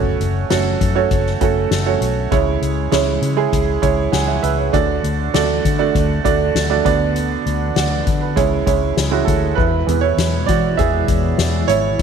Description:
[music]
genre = piano-driven pop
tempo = 99 BPM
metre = 4/4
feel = straight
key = unclear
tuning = A4 = 440 Hz
[part]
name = bright upright piano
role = accompaniment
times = 0.0-12.0 s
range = C#3 to G#5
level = -18 LUFS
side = right 10 dB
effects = none
[part]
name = vintage muted fingered electric bass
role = bass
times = 0.0-12.0 s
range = F#1 to E3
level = -20 LUFS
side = left 3 dB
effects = none
[part]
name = soft-mallet drum kit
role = drums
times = 0.2-12.0 s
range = crash cymbal, hi-hat, kick drum, snare drum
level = -21 LUFS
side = left 5 dB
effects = none
[part]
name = warm analog pad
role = sustained chords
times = 9.6-12.0 s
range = B2 to E4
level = -25 LUFS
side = left 2 dB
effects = chorus
[sound]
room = moderate echo chamber reverb, RT60 1.9 s, small room ambience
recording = 1960s-style stereo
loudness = -15 LUFS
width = side -6 dB against mid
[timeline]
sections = 0.0-9.6 A section; 9.6-12.0 B section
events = upright piano fill 3.8-4.7; upright piano solo 9.6-12.0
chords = 0.0 F#m; 2.3 C#m; 4.7 D; 6.9 Bm/D; 8.4 C#m; 9.6 E

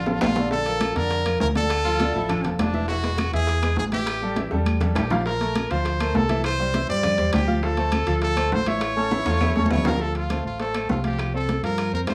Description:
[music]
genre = latin, salsa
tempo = 202 BPM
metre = 4/4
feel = straight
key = D minor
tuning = A4 = 440 Hz
[part]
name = brilliant trumpet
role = melody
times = 0.0-12.1 s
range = D4 to D5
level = -28 LUFS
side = equal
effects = none
[part]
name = deep dub fingered electric bass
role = bass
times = 0.0-12.1 s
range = E1 to G2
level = -29 LUFS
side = equal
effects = none
[part]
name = bright upright piano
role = accompaniment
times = 0.1-12.1 s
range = D3 to F5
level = -30 LUFS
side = equal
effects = none
[part]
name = bongos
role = percussion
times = 0.1-12.1 s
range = none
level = -33 LUFS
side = equal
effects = none
[part]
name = congas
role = percussion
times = 0.1-12.1 s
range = none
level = -31 LUFS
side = equal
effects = none
[part]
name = timbales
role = percussion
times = 0.1-12.1 s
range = none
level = -35 LUFS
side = equal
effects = none
[part]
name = claves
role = percussion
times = 0.2-12.1 s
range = none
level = -40 LUFS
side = equal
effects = none
[part]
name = raspy baritone saxophone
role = second line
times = 1.8-2.5, 9.0-10.0 s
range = C#4 to F4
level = -32 LUFS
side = equal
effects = none
[sound]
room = moderate studio reverb, RT60 0.7 s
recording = small room ambience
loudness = -23 LUFS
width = mono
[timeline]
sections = 0.5-10.0 A section; 10.0-12.1 B section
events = drum fill 0.0-0.5, 4.5-5.3, 9.1-10.0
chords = 0.0 Dm; 0.5 Bb; 1.7 Dmadd9; 2.9 E; 4.1 A5; 5.3 Bbmaj7; 6.4 C; 7.6 Dm7; 8.8 A; 10.0 Dm7; 11.2 Csus4

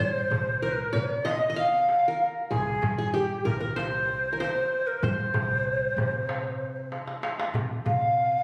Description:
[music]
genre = Arabic maqam ensemble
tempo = 95 BPM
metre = 4/4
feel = straight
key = C maqam bayati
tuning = A4 = 440 Hz
[part]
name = breathy ney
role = melody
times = 0.0-8.4 s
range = G4 to F5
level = -29 LUFS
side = equal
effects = none
[part]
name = qanun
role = second line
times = 0.0-6.9 s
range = G4 to F5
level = -34 LUFS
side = equal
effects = none
[part]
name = upright bass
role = bass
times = 0.0-8.4 s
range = C2 to C3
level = -36 LUFS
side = equal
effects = none
[part]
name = darbuka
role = percussion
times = 0.0-8.3 s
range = none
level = -34 LUFS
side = equal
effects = none
[sound]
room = wet recital hall reverb, RT60 1.4 s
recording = recorded on a phone in the room, studio reverb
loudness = -27 LUFS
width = mono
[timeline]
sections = 0.0-7.5 A section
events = drum fill 6.9-7.5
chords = none

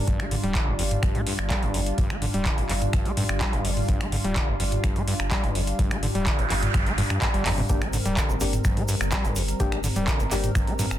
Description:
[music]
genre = acid house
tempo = 126 BPM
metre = 4/4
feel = straight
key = G minor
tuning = A4 = 437 Hz
[part]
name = lush unison pad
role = sustained chords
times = 0.0-11.0 s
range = G3 to Bb4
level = -32 LUFS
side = equal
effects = chorus, sidechain pumping
[part]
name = overdriven acid bass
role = riff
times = 0.1-10.9 s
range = F2 to Bb3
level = -30 LUFS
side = equal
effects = distortion, sidechain pumping, dub echo
[part]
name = round analog bass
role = bass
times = 0.1-11.0 s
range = D1 to G2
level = -30 LUFS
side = equal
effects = tube saturation, sidechain pumping
[part]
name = booming analog drum machine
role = drums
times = 0.1-11.0 s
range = finger snaps, handclaps, hi-hat, toms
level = -28 LUFS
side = equal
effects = soft clipping on snare
[part]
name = electronic kick drum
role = drums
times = 0.1-10.7 s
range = none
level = -26 LUFS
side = equal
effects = none
[part]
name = noise sweep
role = sound effects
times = 6.1-7.7 s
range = none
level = -32 LUFS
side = right 3 dB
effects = none
[part]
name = percussive organ stab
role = stabs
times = 7.7-10.5 s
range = Bb3 to G4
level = -32 LUFS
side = left 4 dB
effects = lush chorus, dub echo
[part]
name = egg shaker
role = percussion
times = 7.7-11.0 s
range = none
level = -38 LUFS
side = right 4 dB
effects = none
[sound]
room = light reverb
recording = dense, heavily limited modern master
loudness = -22 LUFS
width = side -12 dB against mid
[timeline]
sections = 0.0-11.0 A section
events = noise sweep 6.1-7.7; drum fill 7.5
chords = 0.0 Gm

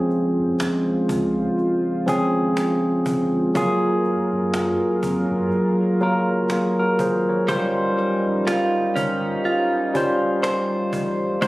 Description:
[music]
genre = contemporary R&B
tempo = 61 BPM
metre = 4/4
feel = swing 58% on 16ths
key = unclear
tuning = A4 = 442 Hz
[part]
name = barky tine electric piano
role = accompaniment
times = 0.0-11.5 s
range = F3 to Db5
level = -20 LUFS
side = equal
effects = none
[part]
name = warm analog pad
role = sustained chords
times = 0.0-11.5 s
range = Db3 to C5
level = -26 LUFS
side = equal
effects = chorus
[part]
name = cajon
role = drums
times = 0.1-11.5 s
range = none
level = -30 LUFS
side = equal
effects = none
[part]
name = saturated sub bass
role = bass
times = 0.4-11.5 s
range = Eb1 to Gb2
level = -34 LUFS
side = equal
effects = none
[part]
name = direct-recorded clean electric guitar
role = arpeggios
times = 7.5-11.5 s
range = G3 to C5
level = -23 LUFS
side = right 1 dB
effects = ping-pong delay
[sound]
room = light reverb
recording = recorded on a phone in the room, studio reverb, compression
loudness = -19 LUFS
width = side -19 dB against mid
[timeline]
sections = 0.0-11.5 A section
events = none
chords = 0.0 Dbmaj7; 3.6 Gbmaj9; 7.5 Eb13/G

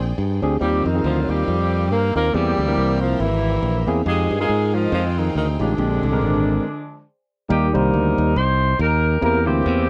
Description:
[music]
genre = uptempo gospel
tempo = 139 BPM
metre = 4/4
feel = swing 57% on 8ths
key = Eb major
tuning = A4 = 440 Hz
[part]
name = breathy tenor saxophone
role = melody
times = 0.0-7.0 s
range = D3 to C4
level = -27 LUFS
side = equal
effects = none
[part]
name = mellow horn section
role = melody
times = 0.0-9.9 s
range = F3 to C5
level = -27 LUFS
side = equal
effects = none
[part]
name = rich studio string section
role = sustained chords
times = 0.0-6.6 s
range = G4 to G5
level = -39 LUFS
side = equal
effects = none
[part]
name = modern bright fingered electric bass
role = bass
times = 0.0-9.9 s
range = Ab1 to Ab2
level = -23 LUFS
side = equal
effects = none
[part]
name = barky tine electric piano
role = accompaniment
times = 0.4-9.9 s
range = Bb2 to C5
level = -24 LUFS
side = equal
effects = overdrive
[sound]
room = light reverb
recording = dry, close 1970s-style studio recording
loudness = -20 LUFS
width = mono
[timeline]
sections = 0.0-7.5 A section; 7.5-9.9 B section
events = stop 6.6-7.5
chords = 0.0 Bb13; 0.6 Eb69; 2.3 C7b13; 4.1 Fm9; 5.8 Bb13; 7.5 Eb; 9.2 C7

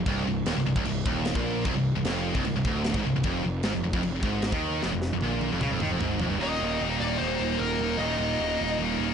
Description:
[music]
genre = heavy metal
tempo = 152 BPM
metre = 4/4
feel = straight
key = unclear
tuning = A4 = 440 Hz
[part]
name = heavy high-gain guitar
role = riff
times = 0.0-9.1 s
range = C2 to Eb4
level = -30 LUFS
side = left 12 dB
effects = distortion
[part]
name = high-gain distorted guitar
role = riff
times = 0.0-9.1 s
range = C2 to Eb3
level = -29 LUFS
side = right 9 dB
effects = distortion
[part]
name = fuzz picked electric bass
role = bass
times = 0.0-9.1 s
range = C1 to Eb2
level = -32 LUFS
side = equal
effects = overdrive, tube saturation
[part]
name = tight metal drum kit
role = drums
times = 0.1-6.3 s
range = crash cymbal, kick drum, snare drum, toms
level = -32 LUFS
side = equal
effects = none
[part]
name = high-gain lead guitar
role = melody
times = 6.4-8.7 s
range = Bb4 to Eb5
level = -30 LUFS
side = left 2 dB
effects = distortion, ping-pong delay
[sound]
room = light reverb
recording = blown-out, overdriven recording, overdrive, nothing above 11.0 kHz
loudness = -24 LUFS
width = side -7 dB against mid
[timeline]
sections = 0.0-6.4 A section; 6.4-9.1 B section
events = drum fill 4.8-6.4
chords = 0.1 Cm; 3.2 Fm11; 6.4 Eb5

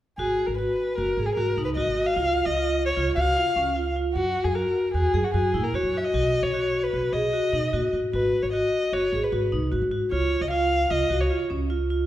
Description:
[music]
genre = contemporary instrumental, chamber music in an uneven meter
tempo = 151 BPM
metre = 5/4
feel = straight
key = G# minor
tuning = A4 = 439 Hz
[part]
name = dark violin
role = melody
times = 0.2-11.4 s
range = F#4 to E#5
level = -26 LUFS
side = left 1 dB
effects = none
[part]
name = vibraphone with hard mallets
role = arpeggios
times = 0.2-12.0 s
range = C#4 to G#4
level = -25 LUFS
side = equal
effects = none
[part]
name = upright bass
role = bass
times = 0.2-12.1 s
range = F#1 to B2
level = -28 LUFS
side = right 1 dB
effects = none
[sound]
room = moderate concert hall reverb, RT60 2.4 s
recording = minimal, uncompressed stereo recording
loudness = -22 LUFS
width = side -13 dB against mid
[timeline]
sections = 0.2-12.1 A section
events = none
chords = 0.2 G#m7; 2.2 C#; 4.1 F#7; 6.1 B; 8.1 G#5; 10.1 C#

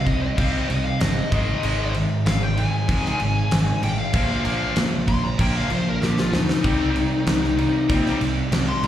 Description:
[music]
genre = hard rock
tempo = 96 BPM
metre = 4/4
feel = straight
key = C minor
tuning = A4 = 440 Hz
[part]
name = smooth overdriven lead guitar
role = melody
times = 0.0-8.9 s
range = Eb4 to C6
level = -26 LUFS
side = left 4 dB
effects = slapback echo
[part]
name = mellow tonewheel organ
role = sustained chords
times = 0.0-8.9 s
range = Ab3 to Eb5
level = -34 LUFS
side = right 1 dB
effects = slow rotary speaker
[part]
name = crunchy overdriven guitar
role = riff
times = 0.0-8.9 s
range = Ab2 to Eb4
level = -32 LUFS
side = equal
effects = none
[part]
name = high-gain distorted guitar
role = riff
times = 0.0-8.9 s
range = Ab2 to C4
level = -28 LUFS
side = left 6 dB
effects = distortion
[part]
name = scooped high-gain guitar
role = riff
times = 0.0-8.9 s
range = Ab2 to C4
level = -26 LUFS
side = right 5 dB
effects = distortion, slapback echo
[part]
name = picked electric bass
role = bass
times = 0.1-8.9 s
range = G1 to Bb2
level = -25 LUFS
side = equal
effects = none
[part]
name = huge arena drum kit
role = drums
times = 0.1-8.9 s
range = crash cymbal, kick drum, snare drum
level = -25 LUFS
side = equal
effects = none
[sound]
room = light reverb, small room ambience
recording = live gig heard through the venue's PA, club reverb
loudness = -19 LUFS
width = side -11 dB against mid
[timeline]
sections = 0.0-8.9 A section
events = lead electric guitar solo 0.0-8.9; drum fill 6.0-6.6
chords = 0.0 Cm; 1.3 Ab; 4.1 Bb; 6.6 Cm

